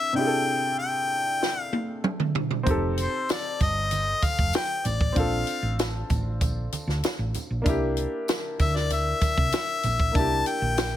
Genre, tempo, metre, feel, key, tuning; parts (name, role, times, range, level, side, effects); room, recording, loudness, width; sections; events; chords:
lush 1970s-style soul; 96 BPM; 4/4; straight; A4 = 440 Hz
clear harmonica; melody; 0.0-11.0 s; C5 to A5; -26 LUFS; left 3 dB
warm grand piano; accompaniment; 0.0-11.0 s; C3 to Bb4; -30 LUFS; left 1 dB
compact cocktail drum kit; drums; 1.4-10.9 s; hi-hat, kick drum, snare drum, toms; -26 LUFS; right 1 dB
hollow-body short-scale fingered electric bass; bass; 2.7-11.0 s; F1 to D2; -28 LUFS; right 1 dB
congas; percussion; 2.7-10.8 s; -37 LUFS; right 5 dB
tambourine; percussion; 3.0-10.9 s; -44 LUFS; right 3 dB
small room ambience; -23 LUFS; side -12 dB against mid
0.0-11.0 A section
drum fill 1.4-2.7
0.0 C7; 2.7 F9; 5.2 Bbmaj7; 7.7 C7